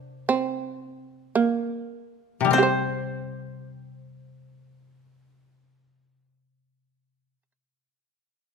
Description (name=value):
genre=japanese traditional, Japanese chamber music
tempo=48-61 BPM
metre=4/4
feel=rubato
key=unclear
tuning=A4 = 440 Hz
part: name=koto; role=melody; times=0.0-7.4 s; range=C5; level=-27 LUFS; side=left 2 dB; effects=none
part: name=shamisen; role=second line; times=0.0-7.5 s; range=Bb3 to C5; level=-24 LUFS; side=right 6 dB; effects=none
part: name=koto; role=accompaniment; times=0.0-7.4 s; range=C3 to C4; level=-26 LUFS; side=left 7 dB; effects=none
room=light reverb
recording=close, detailed microphones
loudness=-22 LUFS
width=side -5 dB against mid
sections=0.0-2.5 A section; 2.5-7.3 B section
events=slowing down 0.0-2.5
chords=none